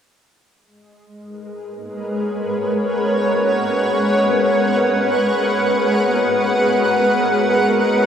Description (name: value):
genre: ambient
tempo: free time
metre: none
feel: none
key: G# minor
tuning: A4 = 440 Hz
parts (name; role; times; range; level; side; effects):
- granular cloud pad; solo; 1.3-8.1 s; G#3 to F#5; -16 LUFS; equal; built-in reverb
room: wet huge ambient reverb, RT60 7.8 s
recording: cassette tape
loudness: -15 LUFS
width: side -8 dB against mid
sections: 0.4-8.1 A section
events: none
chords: 0.4 G#m11